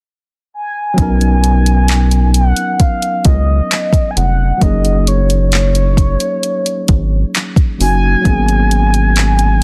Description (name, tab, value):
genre	contemporary R&B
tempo	66 BPM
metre	4/4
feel	straight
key	unclear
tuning	A4 = 440 Hz
part	mellow horn-like synth lead	melody	0.5-9.6 s	C#5 to G#5	-20 LUFS	equal	chorus, digital delay
part	tine electric piano	accompaniment	0.9-9.6 s	F#3 to A#4	-21 LUFS	equal	none
part	rubbery square bass	bass	1.0-9.6 s	E#1 to C#2	-15 LUFS	equal	none
part	smooth R&B drum kit	drums	1.0-9.6 s	handclaps, hi-hat, kick drum	-16 LUFS	equal	overdrive
room	little or no reverb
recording	dense, heavily limited modern master, lossy compression artefacts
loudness	-13 LUFS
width	mono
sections	1.0-9.6 A section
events	none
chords	0.0 N.C.; 1.0 Bmaj9; 4.6 F#69; 8.3 G#m11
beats	0.07 | 0.98 1.89 2.80 3.71 | 4.62 5.53 6.43 7.34 | 8.25 9.16